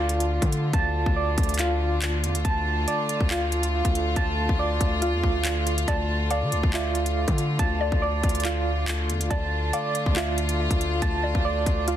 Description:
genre	hip hop, drill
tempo	140 BPM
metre	4/4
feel	half-time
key	D minor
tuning	A4 = 440 Hz
part	rich chamber string section	sustained chords	0.0-12.0 s	D3 to F4	-31 LUFS	left 3 dB	none
part	soft electric-piano-like synth keys	arpeggios	0.0-12.0 s	F4 to A5	-27 LUFS	right 3 dB	chorus, tremolo, low-pass filter, ping-pong delay
part	hard-hitting 808-style bass	bass	0.0-12.0 s	D2 to D3	-26 LUFS	equal	none
part	drill drum kit	drums	0.1-12.0 s	handclaps, hi-hat, kick drum	-27 LUFS	equal	none
part	hollow square pluck	second line	5.9-11.4 s	D5 to F5	-34 LUFS	left 4 dB	chorus, ping-pong delay
room	little or no reverb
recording	dense, heavily limited modern master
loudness	-22 LUFS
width	side -11 dB against mid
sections	0.0-12.0 A section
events	none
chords	0.0 Dm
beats	0.31 | 0.73 1.16 1.59 2.02 | 2.45 2.88 3.31 3.73 | 4.16 4.59 5.02 5.45 | 5.88 6.31 6.74 7.16 | 7.59 8.02 8.45 8.88 | 9.31 9.73 10.16 10.59 | 11.02 11.45 11.88

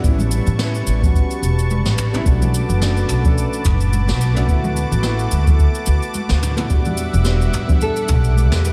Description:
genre	sunset chillout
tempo	108 BPM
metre	4/4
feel	swing 56% on 16ths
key	D major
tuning	A4 = 440 Hz
part	warm grand piano	accompaniment	0.0-8.7 s	G3 to A4	-28 LUFS	equal	low-pass filter, digital delay, shimmer reverb, slapback echo
part	lush unison pad	sustained chords	0.0-8.7 s	G3 to D6	-29 LUFS	equal	chorus, shimmer reverb
part	upright bass	bass	0.0-8.7 s	E1 to A2	-20 LUFS	equal	none
part	electronic kick drum	drums	0.0-8.2 s	none	-18 LUFS	equal	overdrive
part	jazz brush drum kit	drums	0.0-8.7 s	cabasa, snare drum, toms	-28 LUFS	equal	none
part	congas	percussion	0.2-8.5 s	none	-30 LUFS	equal	none
part	nylon-string guitar	melody	7.3-8.7 s	F#4 to B4	-27 LUFS	equal	delay, shimmer reverb, slapback echo
room	light reverb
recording	none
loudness	-17 LUFS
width	mono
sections	0.0-8.7 A section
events	none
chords	0.0 A9; 2.3 Bm7; 4.5 D6; 6.7 Em9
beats	| 0.04 0.59 1.15 1.70 | 2.26 2.81 3.37 3.92 | 4.48 5.04 5.59 6.15 | 6.70 7.26 7.81 8.37

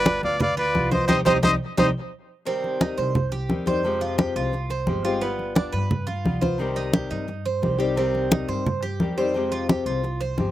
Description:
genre	latin, Cuban son and guajira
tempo	174 BPM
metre	4/4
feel	straight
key	C minor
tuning	A4 = 439 Hz
part	clear trumpet	melody	0.0-1.9 s	B4 to D5	-24 LUFS	right 1 dB	slapback echo
part	bright reedy concert flute	second line	0.0-1.9 s	D5 to F5	-27 LUFS	left 4 dB	slapback echo
part	flamenco guitar	accompaniment	0.0-10.5 s	C3 to G4	-27 LUFS	left 5 dB	none
part	Cuban tres	arpeggios	0.0-10.5 s	B3 to C5	-28 LUFS	right 6 dB	slapback echo
part	upright bass	bass	0.0-10.5 s	G1 to G2	-29 LUFS	equal	none
part	congas	percussion	0.1-10.5 s	none	-24 LUFS	equal	none
room	little or no reverb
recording	recorded outdoors, with no room sound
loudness	-21 LUFS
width	side -13 dB against mid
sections	0.0-2.5 A section; 2.5-10.5 B section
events	band accent 1.1-2.5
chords	0.0 G7; 1.1 Cm; 3.8 Fmadd9; 5.2 G7; 6.6 Cm; 9.3 Fmadd9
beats	0.06 0.40 0.75 | 1.09 1.44 1.78 2.12 | 2.47 2.81 3.15 3.50 | 3.84 4.19 4.53 4.88 | 5.22 5.56 5.91 6.25 | 6.59 6.94 7.28 7.63 | 7.97 8.31 8.66 9.00 | 9.35 9.69 10.03 10.38

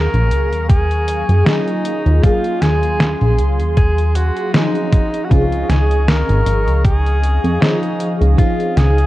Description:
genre	vaporwave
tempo	78 BPM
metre	4/4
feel	swing 55% on 16ths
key	Eb dorian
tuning	A4 = 440 Hz
part	bright alto saxophone	melody	0.0-9.1 s	Eb4 to Bb4	-21 LUFS	equal	vintage 12-bit sampler grit, tape echo
part	FM electric piano with soft pad layer	accompaniment	0.0-9.1 s	F3 to F5	-22 LUFS	equal	phaser, ensemble chorus, tape echo
part	warbly tape-like pad	sustained chords	0.1-9.1 s	Ab4 to Eb6	-28 LUFS	right 2 dB	chorus, built-in reverb
part	chorused synth bass	bass	0.0-9.1 s	Ab1 to Gb2	-14 LUFS	equal	none
part	detuned 8-bit digital drum machine	drums	0.1-9.1 s	hi-hat, snare drum	-19 LUFS	equal	none
part	electronic kick drum	drums	0.7-8.6 s	none	-13 LUFS	equal	none
room	light reverb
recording	echo-heavy mix, cassette tape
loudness	-13 LUFS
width	side -16 dB against mid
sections	0.0-9.1 A section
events	none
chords	0.0 Ebm11; 4.9 Dbmaj9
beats	0.70 1.47 | 2.23 3.00 3.77 4.54 | 5.31 6.08 6.85 7.62 | 8.39

